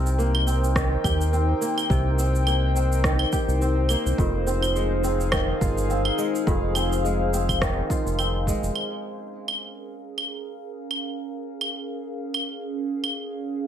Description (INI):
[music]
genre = folktronica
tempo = 105 BPM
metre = 4/4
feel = swing 56% on 16ths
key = Bb dorian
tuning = A4 = 440 Hz
[part]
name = warbly tape-like pad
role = sustained chords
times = 0.0-13.7 s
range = Db4 to G5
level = -29 LUFS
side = left 1 dB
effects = chorus, built-in reverb, phaser, plate reverb
[part]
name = kora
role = arpeggios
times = 0.0-10.5 s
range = F2 to G4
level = -28 LUFS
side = right 1 dB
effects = digital delay, plate reverb
[part]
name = round analog bass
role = bass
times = 0.0-8.7 s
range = F1 to Eb2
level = -24 LUFS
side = equal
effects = none
[part]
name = electronic shaker, claves and rim click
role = drums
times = 0.1-13.2 s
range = none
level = -28 LUFS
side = right 1 dB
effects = overdrive
[part]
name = electronic kick drum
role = drums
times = 0.8-8.6 s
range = none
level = -26 LUFS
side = equal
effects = overdrive
[sound]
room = light reverb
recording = none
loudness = -22 LUFS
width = side -9 dB against mid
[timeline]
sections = 0.0-8.8 A section; 8.8-13.7 B section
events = filter sweep on ambient pad 8.8-13.7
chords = 0.0 Cm7; 4.2 Fm7; 8.8 Bbm7